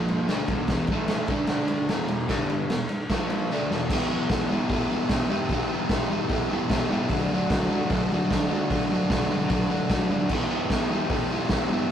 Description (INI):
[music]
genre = garage rock duo or trio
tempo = 150 BPM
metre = 4/4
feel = straight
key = E minor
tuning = A4 = 438 Hz
[part]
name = crunchy overdriven guitar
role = riff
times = 0.0-11.9 s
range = E2 to G4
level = -25 LUFS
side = equal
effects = none
[part]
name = raw garage drum kit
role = drums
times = 0.1-11.6 s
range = crash cymbal, hi-hat, kick drum, ride cymbal, snare drum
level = -27 LUFS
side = equal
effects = none
[sound]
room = moderate stone room reverb, RT60 1.1 s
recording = rough rehearsal-room recording, tube saturation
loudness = -23 LUFS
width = side -9 dB against mid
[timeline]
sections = 0.0-3.9 A section; 3.9-11.9 B section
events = drum fill 3.5-3.9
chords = 0.3 E5; 0.9 A5; 1.3 D5; 1.9 E5; 2.3 G5; 2.7 E5; 3.1 A#5; 3.5 E5; 3.9 Em; 7.1 D; 10.3 Em